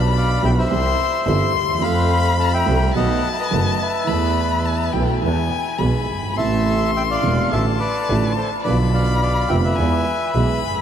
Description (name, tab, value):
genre	tango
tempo	106 BPM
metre	4/4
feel	rubato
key	unclear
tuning	A4 = 440 Hz
part	warm violin	second line	0.0-10.8 s	G5 to C6	-24 LUFS	left 7 dB	diffuse ambient delay
part	dark concert grand piano	accompaniment	0.0-10.8 s	E1 to A4	-23 LUFS	right 4 dB	lush chorus
part	clear double bass	bass	0.0-10.8 s	E1 to F2	-20 LUFS	right 1 dB	none
part	bandoneon	melody	0.2-10.6 s	A4 to C6	-23 LUFS	left 1 dB	diffuse ambient delay
room	moderate huge ambient reverb, RT60 3.8 s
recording	dreamy mix soaked in reverb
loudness	-16 LUFS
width	side -9 dB against mid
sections	0.0-10.8 A section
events	none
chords	0.0 G7/B; 0.7 C; 1.8 F; 3.0 B7; 4.1 Esus4; 5.2 E; 6.4 Amadd9; 7.5 Dmadd9/A; 8.7 Bdim; 9.8 E